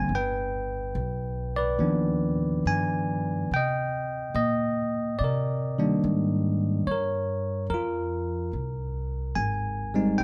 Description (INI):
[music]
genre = jazz ballad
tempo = 71 BPM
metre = 4/4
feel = swing 69% on 8ths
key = C minor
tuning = A4 = 438 Hz
[part]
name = bell-like tine electric piano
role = accompaniment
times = 0.0-10.2 s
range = D3 to Ab5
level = -29 LUFS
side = equal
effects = none
[part]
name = upright bass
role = bass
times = 0.0-10.2 s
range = F1 to C3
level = -33 LUFS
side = equal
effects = none
[sound]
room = light reverb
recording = none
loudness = -27 LUFS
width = mono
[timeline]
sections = 0.0-10.2 A section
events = none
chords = 0.1 G7b13; 3.5 Cm9; 6.9 Gm7b5; 8.5 Cm7